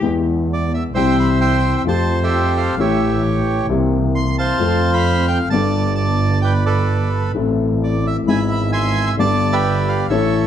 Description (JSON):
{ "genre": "tango", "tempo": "131 BPM", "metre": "4/4", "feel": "rubato", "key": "unclear", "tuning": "A4 = 440 Hz", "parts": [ { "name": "dark grand piano", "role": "accompaniment", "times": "0.0-10.5 s", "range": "G1 to A4", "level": "-19 LUFS", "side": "left 5 dB", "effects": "none" }, { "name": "warm double bass", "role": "bass", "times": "0.0-10.5 s", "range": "G1 to F2", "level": "-20 LUFS", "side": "right 2 dB", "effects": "none" }, { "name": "bandoneon", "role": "melody", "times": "0.5-10.5 s", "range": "G4 to C6", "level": "-20 LUFS", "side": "right 2 dB", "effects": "none" } ], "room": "moderate large studio reverb, RT60 1.2 s", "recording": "dark, warm production", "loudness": "-15 LUFS", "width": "side -9 dB against mid", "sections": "0.0-10.5 A section", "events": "none", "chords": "0.0 E; 0.9 C; 1.9 Fadd9; 2.8 A7; 3.7 C7; 4.6 F; 5.5 Gadd9; 7.4 Am; 8.3 E/G#; 9.2 G", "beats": "| 0.03 0.49 0.95 1.41 | 1.86 2.32 2.78 3.24 | 3.69 4.15 4.61 5.07 | 5.52 5.98 6.44 6.90 | 7.36 7.82 8.28 8.74 | 9.19 9.65 10.11" }